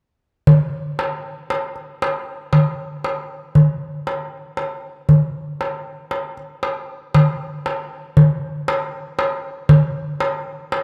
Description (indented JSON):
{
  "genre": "greek folk",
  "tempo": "free time",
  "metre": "none",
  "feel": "none",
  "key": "none",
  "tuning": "none",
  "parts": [
    { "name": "darbuka", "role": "percussion", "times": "0.5-10.8 s", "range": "none", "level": "-19 LUFS", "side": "equal", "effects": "none" }
  ],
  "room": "light reverb",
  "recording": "close, detailed microphones",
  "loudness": "-20 LUFS",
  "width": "mono",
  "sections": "0.5-10.8 A section",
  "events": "none",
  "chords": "none"
}